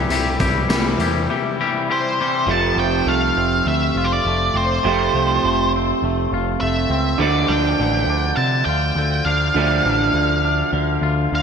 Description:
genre	indie rock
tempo	102 BPM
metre	4/4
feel	straight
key	unclear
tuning	A4 = 440 Hz
part	twangy electric guitar	riff	0.0-11.4 s	C3 to G4	-23 LUFS	left 6 dB	wide subtle chorus
part	growling picked electric bass	bass	0.0-11.4 s	F1 to C3	-22 LUFS	equal	overdrive
part	raw garage drum kit	drums	0.1-1.1 s	hi-hat, kick drum, snare drum, tambourine	-23 LUFS	equal	gated reverb
part	octave-fuzz lead guitar	melody	1.9-11.4 s	C5 to A5	-21 LUFS	right 1 dB	distortion, ping-pong delay
part	electric guitar through a small old amp	riff	2.5-11.4 s	F2 to D4	-21 LUFS	right 5 dB	lush chorus
room	moderate lush hall reverb, RT60 2.6 s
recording	bright 1980s-style digital production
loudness	-16 LUFS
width	side -6 dB against mid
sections	0.0-2.5 A section; 2.5-11.4 B section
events	none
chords	0.0 C; 2.5 F; 7.2 Dm

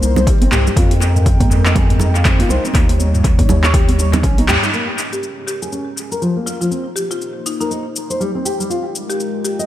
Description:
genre	afro house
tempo	121 BPM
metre	4/4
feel	swing 59% on 16ths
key	unclear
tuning	A4 = 442 Hz
part	warm analog pad	sustained chords	0.0-9.7 s	G3 to G5	-25 LUFS	equal	chorus, sidechain pumping
part	round analog bass	bass	0.0-4.6 s	G1 to F2	-15 LUFS	equal	sidechain pumping
part	afro-pop drum kit	drums	0.0-9.7 s	handclaps, hi-hat, shaker, toms	-20 LUFS	equal	analog delay
part	nylon-string guitar	arpeggios	0.2-9.7 s	F3 to F5	-22 LUFS	left 1 dB	sidechain pumping, low-pass filter, analog delay
part	congas	percussion	0.2-4.6 s	none	-22 LUFS	right 3 dB	analog delay
part	electronic kick drum	drums	0.3-4.4 s	none	-15 LUFS	equal	none
part	buzzing marimba with medium hard mallets	melody	5.1-9.6 s	Eb4 to G4	-25 LUFS	left 1 dB	analog delay
room	light reverb, digital ambience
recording	echo-heavy mix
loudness	-14 LUFS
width	side -13 dB against mid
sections	0.0-4.7 A section; 4.7-9.7 B section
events	band accent 4.5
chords	0.0 Cm7; 0.8 Fm11; 2.8 Eb7; 4.7 Bbm7; 6.7 Cm7; 8.7 Fm11

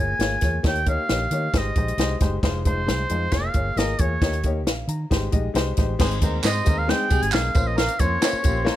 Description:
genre	uptempo 1960s-style soul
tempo	134 BPM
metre	4/4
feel	straight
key	unclear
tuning	A4 = 436 Hz
part	clear oboe	melody	0.0-8.8 s	C5 to Ab5	-26 LUFS	right 1 dB	none
part	warm baby grand piano	accompaniment	0.0-8.8 s	Ab3 to Bb5	-27 LUFS	left 4 dB	none
part	vintage muted fingered electric bass	bass	0.0-8.7 s	F1 to Eb3	-26 LUFS	right 1 dB	none
part	compact cocktail drum kit	drums	0.2-8.8 s	crash cymbal, hi-hat, kick drum, snare drum	-23 LUFS	equal	none
part	mellow horn section	second line	6.0-8.8 s	Ab3 to Db5	-31 LUFS	right 4 dB	none
part	tambourine and handclaps	percussion	6.0-8.8 s	none	-31 LUFS	right 8 dB	none
room	light reverb, small room reverb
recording	none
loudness	-20 LUFS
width	side -13 dB against mid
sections	0.0-6.0 A section; 6.0-8.8 B section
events	none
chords	0.0 Bbm7; 0.6 Eb7; 1.5 Abmaj7; 2.4 Fm7; 3.3 Bbm7/F; 4.2 Eb7; 5.1 Abmaj7; 6.0 Ab; 7.6 Bbmadd9

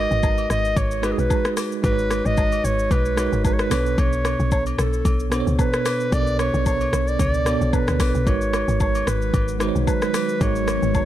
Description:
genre	amapiano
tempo	112 BPM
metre	4/4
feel	swing 55% on 16ths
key	unclear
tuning	A4 = 440 Hz
part	warm clarinet	melody	0.0-11.1 s	G#4 to D#5	-24 LUFS	equal	ping-pong delay
part	bell-like tine electric piano	accompaniment	0.0-11.1 s	B2 to C#5	-25 LUFS	right 4 dB	medium stereo tremolo
part	deep log drum bass	bass	0.0-11.1 s	G#1 to D2	-24 LUFS	left 1 dB	none
part	afro-pop drum kit	drums	0.1-11.1 s	hi-hat, kick drum, rim click, shaker	-24 LUFS	left 1 dB	none
part	woodblock and agogo bells	percussion	0.2-11.1 s	none	-34 LUFS	left 5 dB	none
part	ethereal airy pad	sustained chords	9.0-11.1 s	D#3 to F#4	-29 LUFS	right 1 dB	ensemble chorus, built-in reverb, phaser
room	little or no reverb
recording	none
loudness	-18 LUFS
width	side -12 dB against mid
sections	0.0-11.1 A section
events	none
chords	0.0 G#m9; 3.7 Bm9; 8.3 G#m9

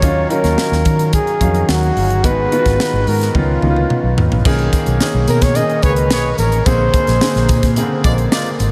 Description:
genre	polished 1980s jazz-funk pop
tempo	108 BPM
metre	4/4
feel	straight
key	unclear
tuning	A4 = 440 Hz
part	warm flugelhorn	melody	0.0-7.8 s	E#4 to D#5	-21 LUFS	equal	diffuse ambient delay
part	clear baby grand piano	accompaniment	0.0-8.7 s	A#2 to E#5	-22 LUFS	equal	lush chorus
part	vintage muted fingered electric bass	bass	0.0-8.7 s	G1 to D#3	-19 LUFS	equal	none
part	crisp fusion drum kit	drums	0.0-8.7 s	crash cymbal, hi-hat, kick drum, snare drum, toms	-21 LUFS	equal	none
part	tambourine	percussion	4.5-8.7 s	none	-36 LUFS	equal	none
part	warm horn section	second line	5.8-8.5 s	G#3 to D5	-28 LUFS	equal	diffuse ambient delay
room	moderate huge ambient reverb, RT60 8.8 s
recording	dreamy mix soaked in reverb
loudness	-15 LUFS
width	mono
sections	0.0-4.5 A section; 4.5-8.7 B section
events	drum fill 3.3-4.5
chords	0.0 D#m9; 2.2 G#m7; 3.3 C#9; 4.5 Bmaj13; 6.7 A#9

